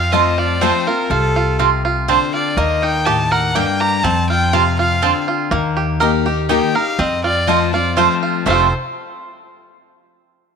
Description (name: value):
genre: bluegrass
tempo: 122 BPM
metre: 3/4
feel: straight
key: F mixolydian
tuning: A4 = 438 Hz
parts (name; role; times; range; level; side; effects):
- bluegrass banjo; melody; 0.0-8.7 s; A3 to Bb4; -20 LUFS; right 5 dB; none
- clear fiddle; melody; 0.0-8.7 s; A4 to Bb5; -20 LUFS; left 2 dB; none
- picked steel-string acoustic guitar; accompaniment; 0.0-8.7 s; F2 to G4; -20 LUFS; left 12 dB; none
- upright bass; bass; 0.0-8.7 s; F1 to F2; -21 LUFS; right 1 dB; none
- mandolin; stabs; 0.1-8.7 s; Bb3 to A5; -20 LUFS; right 13 dB; none
room: light reverb, small room ambience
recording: 1960s-style stereo with parts hard left and right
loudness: -14 LUFS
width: side -6 dB against mid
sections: 0.0-5.5 A section; 5.5-8.5 B section; 8.5-9.9 C section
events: none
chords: 0.0 F; 2.6 Eb; 4.0 F; 5.5 Eb; 7.0 F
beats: 0.12 0.61 | 1.10 1.59 2.08 | 2.57 3.06 3.55 | 4.04 4.53 5.02 | 5.51 6.01 6.50 | 6.99 7.48 7.97 | 8.46